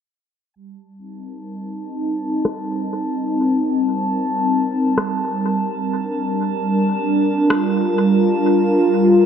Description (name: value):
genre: ambient dub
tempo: 95 BPM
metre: 4/4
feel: swing 56% on 16ths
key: C dorian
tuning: A4 = 440 Hz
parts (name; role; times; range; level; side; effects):
- drifting glass-harmonics texture; texture; 2.0-9.3 s; A5; -27 LUFS; equal; chorus, built-in reverb
- warm analog pad; sustained chords; 0.6-9.3 s; G3 to Bb4; -17 LUFS; equal; chorus
- electronic rim click; drums; 2.5-7.6 s; none; -26 LUFS; left 1 dB; studio reverb, dub echo
room: wet spring reverb, RT60 2.4 s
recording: low-pass filter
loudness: -16 LUFS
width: side -8 dB against mid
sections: 0.6-9.3 A section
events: filter sweep on analog synth pad 0.6-9.3; filter sweep 0.6-9.3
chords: 0.6 Cm7; 5.6 Gm7